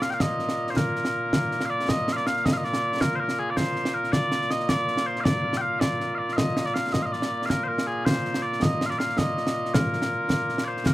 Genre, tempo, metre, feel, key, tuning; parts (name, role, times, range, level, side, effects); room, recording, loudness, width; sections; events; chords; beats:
scottish traditional, Scottish pipe music; 107 BPM (dotted quarters); 6/8; straight; Bb major; A4 = 439 Hz
mellow small bagpipes; melody; 0.0-10.9 s; Bb2 to G5; -25 LUFS; equal
concert snare drum and concert bass drum; drums; 0.0-10.9 s; -26 LUFS; equal
little or no reverb; recorded outdoors, with no room sound; -23 LUFS; side -16 dB against mid
0.0-1.9 A section; 1.9-10.9 A section
0.21 | 0.77 1.33 | 1.89 2.45 | 3.01 3.57 | 4.13 4.70 | 5.26 5.82 | 6.38 6.94 | 7.50 8.06 | 8.62 9.18 | 9.74 10.30 | 10.86